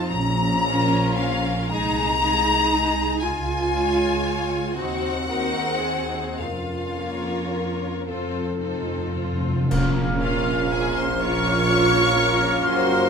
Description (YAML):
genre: classical, slow romantic movement for symphony orchestra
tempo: 35-42 BPM (dotted quarters)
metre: 6/8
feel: rubato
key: Bb minor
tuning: A4 = 444 Hz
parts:
  - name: rich symphonic violin section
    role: melody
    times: 0.0-13.1 s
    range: F5 to Db6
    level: -26 LUFS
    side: left 3 dB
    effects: none
  - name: mellow hollow concert flute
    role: second line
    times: 0.0-13.1 s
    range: F5 to F6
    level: -28 LUFS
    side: left 3 dB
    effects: none
  - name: warm symphonic violin section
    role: second line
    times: 0.0-13.1 s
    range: F4 to Db5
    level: -30 LUFS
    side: left 3 dB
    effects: none
  - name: rich symphonic viola section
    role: accompaniment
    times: 0.0-13.1 s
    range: Ab3 to Gb4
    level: -31 LUFS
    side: left 1 dB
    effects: none
  - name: dark French horn section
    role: sustained chords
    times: 0.0-13.1 s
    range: F3 to Bb4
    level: -29 LUFS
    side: left 2 dB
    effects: none
  - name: dark studio cello section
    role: bass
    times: 0.0-13.1 s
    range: Db4 to Bb4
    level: -30 LUFS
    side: right 4 dB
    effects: none
  - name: warm chamber double bass section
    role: bass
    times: 0.1-13.1 s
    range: Bb1 to Gb2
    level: -28 LUFS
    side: right 3 dB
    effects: none
  - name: timpani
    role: percussion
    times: 0.1-1.7, 6.4-11.2 s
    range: F2 to Bb2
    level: -28 LUFS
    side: left 1 dB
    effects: none
  - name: mellow bassoon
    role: accompaniment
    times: 9.7-13.1 s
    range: Bb3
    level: -31 LUFS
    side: right 4 dB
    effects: none
  - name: clear trombone section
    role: sustained chords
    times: 9.7-13.1 s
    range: F3 to Bb3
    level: -33 LUFS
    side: right 7 dB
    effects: none
  - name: mellow trumpet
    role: stabs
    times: 9.7-13.1 s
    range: Bb4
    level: -30 LUFS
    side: right 3 dB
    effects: none
  - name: warm tuba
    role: bass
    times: 9.7-13.1 s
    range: Gb1 to Bb1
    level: -31 LUFS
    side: right 5 dB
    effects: none
  - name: clash cymbals and concert bass drum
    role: percussion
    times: 9.7-11.7 s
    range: none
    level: -32 LUFS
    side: equal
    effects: none
room: moderate scoring stage reverb, RT60 1.5 s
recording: none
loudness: -20 LUFS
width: side -6 dB against mid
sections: 0.0-9.7 A section; 9.7-13.1 B section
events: timpani fill 8.1-9.7; band accent 9.7-10.7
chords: 0.1 Bbm; 1.7 Ab/C; 3.2 Db; 4.8 Cdim/Eb; 6.4 Bbm/F; 8.1 F; 9.7 Bbm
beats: | 0.10 1.72 | 3.23 4.77 | 6.39 8.07 | 9.71 11.22 | 12.66